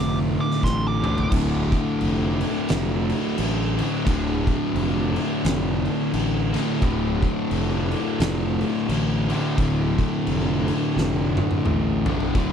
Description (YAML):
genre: stoner and doom metal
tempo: 87 BPM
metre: 4/4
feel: swing 59% on 8ths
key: D minor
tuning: A4 = 441 Hz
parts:
  - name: fuzz lead guitar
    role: melody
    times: 0.0-1.3 s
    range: C6 to D6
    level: -31 LUFS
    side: right 3 dB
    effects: distortion, tape echo
  - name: distorted electric guitar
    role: riff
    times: 0.0-12.5 s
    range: D2 to D3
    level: -30 LUFS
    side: equal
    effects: overdrive
  - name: fuzz guitar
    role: riff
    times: 0.0-12.5 s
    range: D2 to D3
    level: -26 LUFS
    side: left 9 dB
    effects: distortion
  - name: thick fuzz guitar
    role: riff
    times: 0.0-12.5 s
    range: D2 to D3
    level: -28 LUFS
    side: right 9 dB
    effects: distortion
  - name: fuzz fingered electric bass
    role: bass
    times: 0.0-12.5 s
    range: D1 to A1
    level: -26 LUFS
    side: equal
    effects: overdrive
  - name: oversized low-tuned drum kit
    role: drums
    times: 0.5-12.5 s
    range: crash cymbal, kick drum, snare drum, toms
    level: -27 LUFS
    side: equal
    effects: none
room: little or no reverb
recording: none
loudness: -20 LUFS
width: side -8 dB against mid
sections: 0.0-1.3 A section; 1.3-12.5 B section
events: lead electric guitar solo 0.0-1.3; drum fill 0.6-1.3, 11.0-12.3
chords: 0.0 Dm